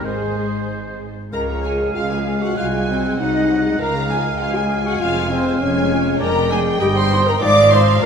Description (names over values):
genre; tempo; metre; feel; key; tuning
quick classical-period movement for symphony orchestra; 99 BPM; 2/4; rubato; Db major; A4 = 439 Hz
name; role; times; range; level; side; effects
rich studio violin section; melody; 0.0-8.1 s; C5 to Ab5; -28 LUFS; left 1 dB; none
large flute ensemble; second line; 0.0-8.1 s; Ab4 to D6; -26 LUFS; right 1 dB; none
warm oboe; second line; 0.0-8.1 s; C5 to Gb5; -27 LUFS; right 1 dB; none
warm studio violin section; second line; 0.0-8.1 s; Ab4 to D6; -28 LUFS; left 3 dB; none
mellow bassoon; accompaniment; 0.0-8.1 s; F3 to Ab3; -29 LUFS; right 3 dB; none
warm studio viola section; accompaniment; 0.0-8.1 s; F3 to Ab4; -29 LUFS; right 1 dB; none
warm French horn section; sustained chords; 0.0-8.1 s; Ab3 to D5; -20 LUFS; left 1 dB; none
rich studio cello section; bass; 0.0-8.1 s; C2 to Bb2; -25 LUFS; right 1 dB; none
warm studio double bass section; bass; 0.0-8.1 s; F1 to Db2; -24 LUFS; right 3 dB; none
warm clarinet; second line; 0.1-8.1 s; C4 to D5; -26 LUFS; left 1 dB; none
room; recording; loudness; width
wet scoring stage reverb, RT60 1.9 s; none; -15 LUFS; side -6 dB against mid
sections
0.0-1.3 A section; 1.3-8.1 B section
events
none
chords
0.0 Ab; 1.3 Db; 2.6 Ab7/C; 3.8 Db; 5.0 Db/F; 6.2 Bb7/F; 6.8 Eb/G; 7.4 Fm7/Ab